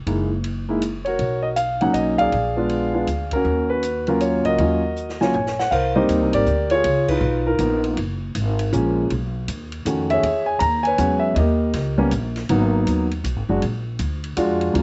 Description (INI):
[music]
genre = jazz piano trio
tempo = 159 BPM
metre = 3/4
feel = swing 64% on 8ths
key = Eb minor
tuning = A4 = 440 Hz
[part]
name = upright bass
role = bass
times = 0.0-14.8 s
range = Gb1 to F2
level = -27 LUFS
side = equal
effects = none
[part]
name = dark grand piano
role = melody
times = 0.1-14.8 s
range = D#3 to Bb5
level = -22 LUFS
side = equal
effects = none
[part]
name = open jazz drum kit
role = drums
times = 0.1-14.8 s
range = crash cymbal, hi-hat, kick drum, ride cymbal, snare drum, toms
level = -37 LUFS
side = equal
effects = none
[sound]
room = little or no reverb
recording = recorded outdoors, with no room sound, nothing above 8.0 kHz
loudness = -21 LUFS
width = mono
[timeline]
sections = 0.0-5.7 A section; 5.7-14.7 B section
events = band accent 3.3, 7.0; drum fill 5.0-5.7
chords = 0.1 Gb13; 1.2 Bmaj9; 2.3 Bb7b9; 3.5 Ebm7; 5.7 Abmaj9 (rootless); 6.8 Db13; 8.0 Gbmaj9; 9.1 B7; 10.2 E69; 11.4 Eb7; 12.5 Abm9; 13.6 Bb7b13